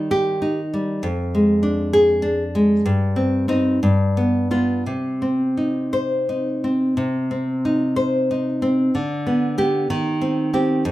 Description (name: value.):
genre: romantic piece for solo classical guitar.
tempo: 55-68 BPM (dotted quarters).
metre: 6/8.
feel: rubato.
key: C minor.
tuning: A4 = 440 Hz.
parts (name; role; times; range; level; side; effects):
nylon-string guitar; solo; 0.0-10.9 s; F2 to C5; -18 LUFS; equal; none.
room: moderate large studio reverb, RT60 0.8 s.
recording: band playing live in one room.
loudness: -18 LUFS.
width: side -15 dB against mid.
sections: 0.0-7.0 A section; 7.0-10.9 A section.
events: none.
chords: 0.0 Eb; 1.0 Ddim/F; 2.9 Cm/G; 3.8 G7; 4.9 Cm; 8.9 G/D; 9.9 Cm/Eb.